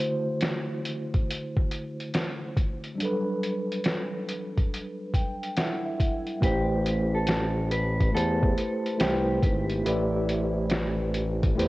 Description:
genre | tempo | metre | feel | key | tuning
lo-fi hip hop | 70 BPM | 4/4 | swing 66% on 16ths | A dorian | A4 = 439 Hz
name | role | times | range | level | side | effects
mellow tine electric piano | accompaniment | 0.0-11.7 s | D3 to G5 | -29 LUFS | equal | medium stereo tremolo, cassette tape
lo-fi sampler-style drum kit | drums | 0.0-11.7 s | hi-hat, kick drum, snare drum | -28 LUFS | equal | vintage 12-bit sampler grit
mellow electric guitar | melody | 5.6-10.7 s | E4 to B4 | -33 LUFS | equal | spring reverb, cassette tape, analog delay
smooth synth bass | bass | 6.4-11.7 s | G#1 to E2 | -28 LUFS | equal | none
room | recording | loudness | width
moderate lush hall reverb, RT60 2.2 s | home recording on cassette, nothing above 10.4 kHz | -25 LUFS | side -19 dB against mid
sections
0.0-6.4 A section; 6.4-11.7 B section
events
tine electric piano fill 4.7-6.4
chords
0.0 D7; 3.0 Gmaj7; 6.4 Am9

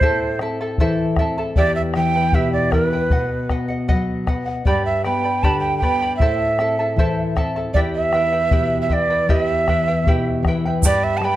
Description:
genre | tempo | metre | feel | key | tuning
andean folk, Andean ensemble | 78 BPM | 2/4 | straight | E minor | A4 = 440 Hz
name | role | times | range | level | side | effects
breathy quena | melody | 0.0-11.4 s | B4 to A5 | -20 LUFS | right 3 dB | none
charango | accompaniment | 0.0-11.4 s | E4 to B5 | -24 LUFS | equal | none
nylon-string guitar | accompaniment | 0.0-11.4 s | E2 to C4 | -23 LUFS | left 2 dB | none
bombo | percussion | 0.0-11.4 s | none | -21 LUFS | left 1 dB | none
egg shaker | percussion | 10.8-11.0 s | none | -24 LUFS | right 7 dB | none
room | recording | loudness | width
moderate recital hall reverb, RT60 1.4 s | dark, warm production | -16 LUFS | side -14 dB against mid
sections
0.0-10.8 A section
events
none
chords
0.0 Am; 1.6 Em; 3.1 B; 4.6 G; 6.2 Am; 7.7 Em; 10.8 G

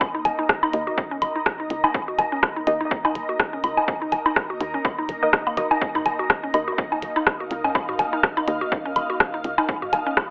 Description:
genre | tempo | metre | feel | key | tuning
minimal techno | 124 BPM | 4/4 | swing 56% on 16ths | unclear | A4 = 441 Hz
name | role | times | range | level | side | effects
electronic kick drum | drums | 0.0-10.3 s | none | -26 LUFS | equal | overdrive
electronic woodblock and toms | percussion | 0.0-10.3 s | none | -24 LUFS | equal | digital delay
granular cloud pad | texture | 0.0-10.3 s | Bb3 to Bb5 | -29 LUFS | equal | built-in reverb, sidechain pumping
mallet-like synth pluck | riff | 0.1-10.1 s | Bb3 to Bb4 | -28 LUFS | equal | chorus, sidechain pumping, digital delay
woody FM bass | bass | 0.3-10.1 s | Eb1 to Eb2 | -30 LUFS | equal | sidechain pumping
minimal click drum kit | drums | 0.3-10.3 s | hi-hat, rim click | -20 LUFS | equal | none
filtered dub chord stab | stabs | 0.7-8.6 s | Bb3 to Eb5 | -26 LUFS | equal | chorus, digital delay
room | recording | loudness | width
moderate studio reverb, RT60 0.6 s | telephone sound | -20 LUFS | side -32 dB against mid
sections
0.0-10.3 A section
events
filter sweep on synth arpeggio sound 0.0-10.3; filter sweep on synth stab 0.0-10.3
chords
0.0 Eb5

